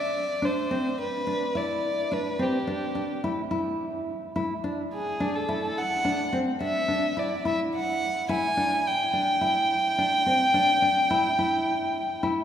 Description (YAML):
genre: contemporary instrumental, contemporary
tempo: 107 BPM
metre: 7/4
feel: straight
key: E minor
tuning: A4 = 438 Hz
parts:
  - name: dark violin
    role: melody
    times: 0.0-12.2 s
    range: G4 to G#5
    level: -25 LUFS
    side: equal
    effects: none
  - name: nylon-string guitar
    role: arpeggios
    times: 0.4-12.4 s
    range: C4 to E4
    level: -28 LUFS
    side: equal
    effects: none
room: wet church reverb, RT60 3.9 s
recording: recorded in a church or concert hall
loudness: -24 LUFS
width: side -9 dB against mid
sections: 0.0-12.4 A section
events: none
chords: 0.0 Amadd11 (rootless); 1.0 Em7